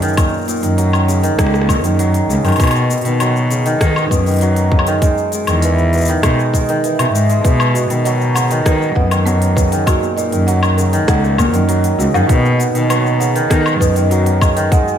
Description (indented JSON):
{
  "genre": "folktronica",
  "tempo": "99 BPM",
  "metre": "4/4",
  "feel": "straight",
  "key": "B major",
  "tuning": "A4 = 441 Hz",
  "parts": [
    { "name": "cimbalom", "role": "arpeggios", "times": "0.0-15.0 s", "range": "A#2 to G#3", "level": "-17 LUFS", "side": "right 1 dB", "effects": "ping-pong delay" },
    { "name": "warm cello", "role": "bass", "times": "0.0-14.7 s", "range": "C#2 to D#3", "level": "-16 LUFS", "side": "equal", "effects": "none" },
    { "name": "organic electronic drum kit", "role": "drums", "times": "0.0-15.0 s", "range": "hi-hat, rim click, shaker, woodblock", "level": "-22 LUFS", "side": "left 2 dB", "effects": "overdrive" },
    { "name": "electronic kick drum", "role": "drums", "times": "0.2-14.8 s", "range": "none", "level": "-16 LUFS", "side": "equal", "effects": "overdrive" },
    { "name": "folk marimba with medium mallets", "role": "second line", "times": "7.4-15.0 s", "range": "A#3 to F#5", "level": "-22 LUFS", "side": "right 3 dB", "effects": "diffuse ambient delay" }
  ],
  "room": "moderate lush hall reverb, RT60 2.1 s",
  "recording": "dreamy mix soaked in reverb",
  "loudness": "-12 LUFS",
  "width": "side -9 dB against mid",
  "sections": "0.0-15.0 A section",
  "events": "none",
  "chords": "0.2 F#6; 2.6 Badd9; 5.0 Emaj7; 7.4 Badd9; 9.9 F#6; 12.3 Badd9"
}